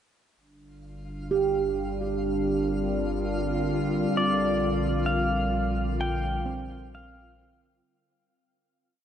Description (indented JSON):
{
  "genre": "ambient",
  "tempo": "64 BPM",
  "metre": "4/4",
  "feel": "straight",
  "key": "G minor",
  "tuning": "A4 = 440 Hz",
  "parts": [
    { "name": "warbly tape-like pad", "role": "sustained chords", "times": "0.4-7.9 s", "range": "D3 to Bb4", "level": "-30 LUFS", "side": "left 1 dB", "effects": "chorus, built-in reverb" },
    { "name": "warm sub bass", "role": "bass", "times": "0.4-7.8 s", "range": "G1 to Bb1", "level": "-34 LUFS", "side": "equal", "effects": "none" },
    { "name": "analog drone", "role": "drone", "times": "1.1-8.0 s", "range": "G3 to D4", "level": "-32 LUFS", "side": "equal", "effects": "chorus" },
    { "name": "twinkling granular texture", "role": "texture", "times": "1.2-7.9 s", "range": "F4 to F5", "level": "-37 LUFS", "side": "equal", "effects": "built-in reverb" },
    { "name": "handpan", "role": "arpeggios", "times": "1.3-8.3 s", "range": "C4 to G4", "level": "-30 LUFS", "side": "right 5 dB", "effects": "diffuse ambient delay" },
    { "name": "pedal steel guitar", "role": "melody", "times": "4.2-7.6 s", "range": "D5 to G5", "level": "-29 LUFS", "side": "equal", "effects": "diffuse ambient delay" }
  ],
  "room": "wet huge ambient reverb, RT60 8.3 s",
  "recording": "dark, warm production, nothing above 10.8 kHz",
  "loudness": "-24 LUFS",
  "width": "side -9 dB against mid",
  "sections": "0.4-7.9 A section",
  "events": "fade-in on ambient pad 0.4-7.9; fade-in on sub bass 0.4-7.9; fade-in on synth texture 0.4-7.9; fade-out on synth drone 0.4-7.9; fade-out 4.1-7.9",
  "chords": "0.4 Gm; 4.1 Bb"
}